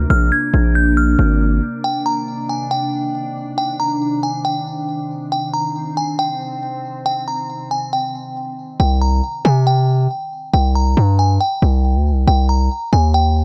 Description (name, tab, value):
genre	hip hop, trap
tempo	138 BPM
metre	4/4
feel	half-time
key	unclear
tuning	A4 = 438 Hz
part	delicate synth tine bell	melody	0.0-13.4 s	G5 to Ab6	-23 LUFS	equal	chorus, low-pass filter, delay
part	glassy FM pad	sustained chords	0.0-8.8 s	C3 to D4	-26 LUFS	equal	ensemble chorus, built-in reverb
part	distorted 808-style bass	bass	0.0-1.6, 8.8-13.4 s	Ab1 to C3	-16 LUFS	equal	distortion
room	light reverb, digital ambience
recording	none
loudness	-18 LUFS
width	mono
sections	0.0-1.8 A section; 1.8-8.8 B section; 8.8-13.4 C section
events	none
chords	0.0 Bbadd9; 1.8 Cmadd9; 8.8 C5